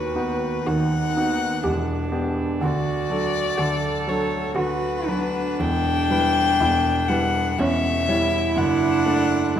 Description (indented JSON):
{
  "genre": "classical, slow romantic movement for piano quartet",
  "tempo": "61 BPM",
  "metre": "3/4",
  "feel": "rubato",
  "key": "D major",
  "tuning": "A4 = 440 Hz",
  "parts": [
    { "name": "warm violin", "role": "melody", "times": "0.0-9.6 s", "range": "B4 to G5", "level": "-24 LUFS", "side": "left 6 dB", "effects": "none" },
    { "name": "warm cello", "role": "second line", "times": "0.0-9.6 s", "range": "C#4 to A4", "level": "-26 LUFS", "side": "right 4 dB", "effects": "none" },
    { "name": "clear concert grand piano", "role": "accompaniment", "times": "0.0-9.6 s", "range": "E1 to D5", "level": "-24 LUFS", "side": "right 1 dB", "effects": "none" },
    { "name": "rich viola", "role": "accompaniment", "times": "0.7-9.6 s", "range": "C#4 to G4", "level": "-28 LUFS", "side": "right 2 dB", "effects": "none" }
  ],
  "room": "wet scoring stage reverb, RT60 1.6 s",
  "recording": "dark, warm production",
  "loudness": "-20 LUFS",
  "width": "side -9 dB against mid",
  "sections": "0.0-9.6 A section",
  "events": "none",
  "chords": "0.0 B/D#; 1.6 Em7; 2.6 D; 4.6 Bm/D; 5.6 Em; 7.6 C#dim/E; 8.6 D/F#"
}